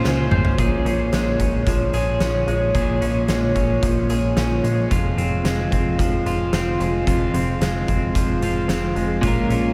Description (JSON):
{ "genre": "dream pop", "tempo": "111 BPM", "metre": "4/4", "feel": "straight", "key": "Bb minor", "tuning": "A4 = 440 Hz", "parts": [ { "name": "direct-recorded clean electric guitar", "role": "accompaniment", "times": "0.0-1.1, 9.2-9.7 s", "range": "Bb2 to C5", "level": "-30 LUFS", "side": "equal", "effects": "tremolo, subtle chorus" }, { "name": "dark French horn section", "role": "sustained chords", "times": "0.0-9.7 s", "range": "Ab3 to F5", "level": "-28 LUFS", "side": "equal", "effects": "none" }, { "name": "electric guitar at the edge of break-up", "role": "arpeggios", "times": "0.0-9.7 s", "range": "F2 to C5", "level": "-25 LUFS", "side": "equal", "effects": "subtle chorus, tape echo" }, { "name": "plucky analog bass", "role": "bass", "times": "0.0-9.7 s", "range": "F1 to Db2", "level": "-26 LUFS", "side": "equal", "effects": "none" }, { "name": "oversized low-tuned drum kit", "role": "drums", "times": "0.0-9.6 s", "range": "hi-hat, kick drum, snare drum, toms", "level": "-26 LUFS", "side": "equal", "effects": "none" } ], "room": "moderate huge ambient reverb, RT60 7.7 s", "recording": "dreamy mix soaked in reverb", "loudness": "-20 LUFS", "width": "mono", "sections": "0.6-9.7 A section", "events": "drum fill 0.0-0.6", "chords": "0.0 Bbm9; 0.6 Bbm7; 4.9 Fm; 9.2 Bbm7" }